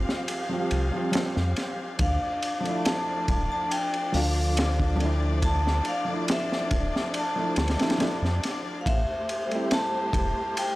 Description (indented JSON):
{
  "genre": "trip hop",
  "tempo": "70 BPM",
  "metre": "4/4",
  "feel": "straight",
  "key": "D minor",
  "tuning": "A4 = 444 Hz",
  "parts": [
    { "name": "felt-muted upright piano", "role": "accompaniment", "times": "0.0-10.8 s", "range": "F3 to F4", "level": "-31 LUFS", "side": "right 1 dB", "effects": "tremolo, tape echo" },
    { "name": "rich symphonic string section", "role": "sustained chords", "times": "0.0-10.8 s", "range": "F3 to F5", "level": "-33 LUFS", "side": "left 2 dB", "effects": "none" },
    { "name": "round analog bass", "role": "bass", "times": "0.0-10.3 s", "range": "D1 to F2", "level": "-25 LUFS", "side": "equal", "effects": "none" },
    { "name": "crunchy breakbeat drum kit", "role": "drums", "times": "0.1-10.8 s", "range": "hi-hat, kick drum, ride cymbal, snare drum", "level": "-29 LUFS", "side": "equal", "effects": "none" },
    { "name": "vibraphone with medium hard mallets", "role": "melody", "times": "2.0-10.8 s", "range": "E5 to A5", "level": "-31 LUFS", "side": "equal", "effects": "tape echo" }
  ],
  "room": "small room ambience",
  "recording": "dry, gritty hardware recording",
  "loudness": "-24 LUFS",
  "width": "side -18 dB against mid",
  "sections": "0.0-10.8 A section",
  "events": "none",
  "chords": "0.0 Csus4; 2.0 Dmadd9; 8.9 Am7"
}